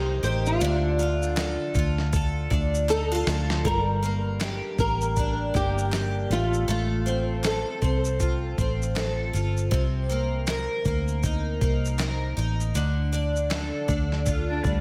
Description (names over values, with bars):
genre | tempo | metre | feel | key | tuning
acoustic pop | 79 BPM | 4/4 | swing 60% on 16ths | G minor | A4 = 440 Hz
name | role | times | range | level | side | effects
picked twelve-string acoustic guitar | accompaniment | 0.0-14.8 s | G2 to Bb4 | -32 LUFS | equal | double-tracked
vintage muted fingered electric bass | bass | 0.0-14.8 s | G1 to D2 | -29 LUFS | equal | none
flamenco guitar | melody | 0.2-8.2 s | F4 to C5 | -31 LUFS | equal | ensemble chorus, diffuse ambient delay
dusty soul sampler-style drum kit | drums | 0.2-14.8 s | kick drum, shaker, snare drum | -31 LUFS | equal | none
group handclap | percussion | 1.4-13.7 s | none | -45 LUFS | equal | none
warm cello | second line | 14.5-14.8 s | G3 to D4 | -32 LUFS | equal | none
room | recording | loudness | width
moderate plate reverb, RT60 1.7 s, studio reverb | dreamy mix soaked in reverb | -25 LUFS | mono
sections
0.0-3.6 A section; 3.6-14.8 B section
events
drum fill 2.9-3.6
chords
0.0 Cm7; 0.6 Dm; 3.6 Gm; 6.3 F/A; 9.7 Cm7; 12.8 Dm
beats
| 0.61 1.37 2.13 2.89 | 3.65 4.41 5.17 5.92 | 6.68 7.44 8.20 8.96 | 9.72 10.48 11.23 11.99 | 12.75 13.51 14.27